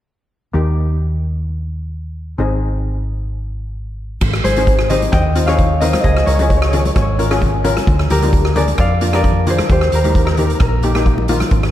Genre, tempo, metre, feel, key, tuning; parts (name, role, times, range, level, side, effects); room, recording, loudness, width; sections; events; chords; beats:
calypso; 131 BPM; 4/4; swing 53% on 16ths; Ab major; A4 = 440 Hz
steel pan; accompaniment; 0.5-11.5 s; Bb3 to Bb4; -21 LUFS; left 2 dB; slapback echo
hollow-body short-scale fingered electric bass; bass; 0.5-11.7 s; Ab1 to F2; -17 LUFS; equal
street-band drum kit; drums; 4.2-11.7 s; crash cymbal, hi-hat, kick drum, rim click; -17 LUFS; equal
concert harp; melody; 4.4-11.7 s; G4 to G5; -19 LUFS; equal; slapback echo
congas; percussion; 4.4-11.5 s; -25 LUFS; left 1 dB; slapback echo
light reverb, small room ambience; -13 LUFS; side -12 dB against mid
0.5-4.2 A section; 4.2-11.7 B section
0.5 Eb; 2.4 Ab; 4.2 Ab6; 6.1 Db; 7.9 Bb7/D; 9.7 Eb
| 0.55 1.01 1.47 1.93 | 2.39 2.85 3.30 3.76 | 4.22 4.68 5.14 5.59 | 6.05 6.51 6.96 7.42 | 7.88 8.33 8.79 9.24 | 9.70 10.16 10.61 11.07 | 11.52